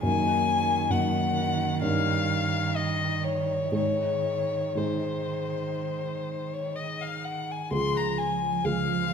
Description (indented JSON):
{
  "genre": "classical, slow romantic movement for piano trio",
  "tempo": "58-68 BPM",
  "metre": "4/4",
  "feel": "rubato",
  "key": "unclear",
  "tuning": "A4 = 441 Hz",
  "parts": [
    { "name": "warm violin", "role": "melody", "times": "0.0-9.1 s", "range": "C5 to C6", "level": "-28 LUFS", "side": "left 5 dB", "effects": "none" },
    { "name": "warm cello", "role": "second line", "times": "0.0-9.1 s", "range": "Eb3 to F3", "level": "-32 LUFS", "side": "right 7 dB", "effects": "none" },
    { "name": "dark grand piano", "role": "accompaniment", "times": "0.0-9.1 s", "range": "Db2 to Bb4", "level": "-29 LUFS", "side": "right 1 dB", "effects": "none" }
  ],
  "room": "wet recital hall reverb, RT60 1.5 s",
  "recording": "minimal, uncompressed stereo recording",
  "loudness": "-25 LUFS",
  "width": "side -6 dB against mid",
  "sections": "0.0-9.1 A section",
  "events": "none",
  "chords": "0.1 Ebm/Gb; 1.8 Eb7/G; 3.8 Ab; 7.7 Db"
}